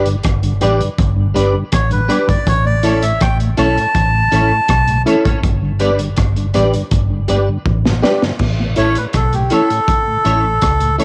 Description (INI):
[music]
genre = roots reggae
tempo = 81 BPM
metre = 4/4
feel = straight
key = A mixolydian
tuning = A4 = 440 Hz
[part]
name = clean electric guitar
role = accompaniment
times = 0.0-11.0 s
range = C#4 to D5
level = -26 LUFS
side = equal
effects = ensemble chorus, cassette tape, dub echo
[part]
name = reed electric piano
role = stabs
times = 0.0-11.0 s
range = E4 to D5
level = -20 LUFS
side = equal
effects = tremolo, cassette tape
[part]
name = vintage muted fingered electric bass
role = bass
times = 0.0-11.0 s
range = G1 to C#2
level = -19 LUFS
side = equal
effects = tube saturation
[part]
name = mellow tonewheel organ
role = accompaniment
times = 0.1-11.0 s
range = G2 to D4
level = -24 LUFS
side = equal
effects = chorus vibrato, slow rotary speaker, cassette tape
[part]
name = crunchy breakbeat drum kit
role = drums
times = 0.1-11.0 s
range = crash cymbal, hi-hat, kick drum, rim click, snare drum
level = -21 LUFS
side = equal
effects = cassette tape, tape echo
[part]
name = melodica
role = melody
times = 1.7-11.0 s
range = G4 to A5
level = -19 LUFS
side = equal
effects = cassette tape, dub echo
[sound]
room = light reverb, small room ambience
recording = home recording on cassette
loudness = -15 LUFS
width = mono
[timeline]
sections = 0.0-8.4 A section; 8.4-11.0 B section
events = drum fill 7.7-8.4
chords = 0.0 G; 2.5 A; 5.4 G; 8.4 A